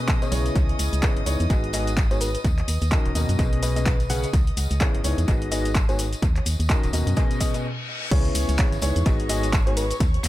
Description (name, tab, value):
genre	piano house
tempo	127 BPM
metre	4/4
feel	swing 58% on 16ths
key	C# minor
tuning	A4 = 440 Hz
part	soft struck synth lead	melody	0.0-10.0 s	B4 to D#5	-36 LUFS	left 1 dB	chorus, dub echo
part	warm chamber violin section	sustained chords	0.0-10.3 s	C#5 to D#6	-37 LUFS	equal	sidechain pumping
part	warm upright piano	riff	0.0-9.8 s	G#2 to G#5	-28 LUFS	left 1 dB	sidechain pumping, dub echo
part	electronic kick drum	drums	0.1-10.1 s	none	-22 LUFS	equal	none
part	punchy analog drum machine	drums	0.1-10.3 s	crash cymbal, handclaps, hi-hat, ride cymbal, shaker	-31 LUFS	equal	dub echo
part	tambourine	percussion	0.1-10.3 s	none	-38 LUFS	left 3 dB	dub echo
part	organ-like FM bass	bass	0.3-10.3 s	D#1 to F#2	-25 LUFS	equal	sidechain pumping
part	reverse cymbal	sound effects	7.4-8.1 s	none	-34 LUFS	left 4 dB	none
room	little or no reverb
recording	echo-heavy mix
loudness	-20 LUFS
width	side -15 dB against mid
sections	0.0-8.1 A section; 8.1-10.3 B section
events	reverse cymbal 7.4-8.1; stop 7.6-8.1; drop 8.1-10.3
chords	0.0 B69; 0.6 C#m7; 1.5 G#m7; 2.4 D#m7; 3.4 B69; 4.3 C#m7; 5.3 G#m7; 6.2 D#m7; 7.2 B69; 8.1 C#m7; 9.1 G#m7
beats	0.08 | 0.56 1.03 1.50 1.97 | 2.44 2.92 3.39 3.86 | 4.33 4.81 5.28 5.75 | 6.22 6.70 7.17 7.64 | 8.11 8.59 9.06 9.53 | 10.00